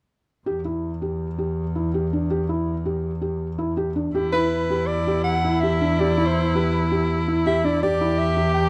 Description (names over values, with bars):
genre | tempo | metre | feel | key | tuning
contemporary instrumental, chamber music in an uneven meter | 163 BPM | 5/4 | straight | E minor | A4 = 440 Hz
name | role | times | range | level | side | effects
felt-muted upright piano | arpeggios | 0.5-8.6 s | D4 to G4 | -27 LUFS | equal | none
bright double bass | bass | 0.5-8.7 s | E2 | -27 LUFS | equal | none
clear viola | second line | 4.1-8.7 s | E4 to G4 | -29 LUFS | equal | none
breathy soprano saxophone | melody | 4.3-8.7 s | B4 to G5 | -26 LUFS | equal | none
room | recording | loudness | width
light reverb | dark, warm production | -23 LUFS | mono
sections
0.5-4.1 A section; 4.1-8.7 B section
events
none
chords
0.5 Em; 4.1 Em7